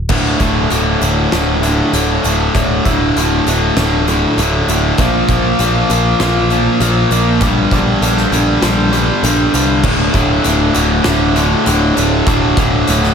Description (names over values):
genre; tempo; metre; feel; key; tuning
post-rock; 99 BPM; 4/4; straight; D minor; A4 = 440 Hz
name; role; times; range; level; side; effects
picked electric bass; bass; 0.0-13.1 s; D1 to C2; -17 LUFS; equal; none
distorted electric guitar; riff; 0.1-13.1 s; D2 to Bb3; -13 LUFS; equal; overdrive
oversized low-tuned drum kit; drums; 0.1-13.1 s; crash cymbal, hi-hat, kick drum, snare drum; -19 LUFS; equal; none
room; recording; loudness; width
wet plate reverb, RT60 2.1 s; dreamy mix soaked in reverb; -11 LUFS; side -7 dB against mid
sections
0.1-13.1 A section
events
build-up 0.1-13.1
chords
0.1 D5; 5.0 Bb5; 7.4 Gm/Bb; 9.8 D5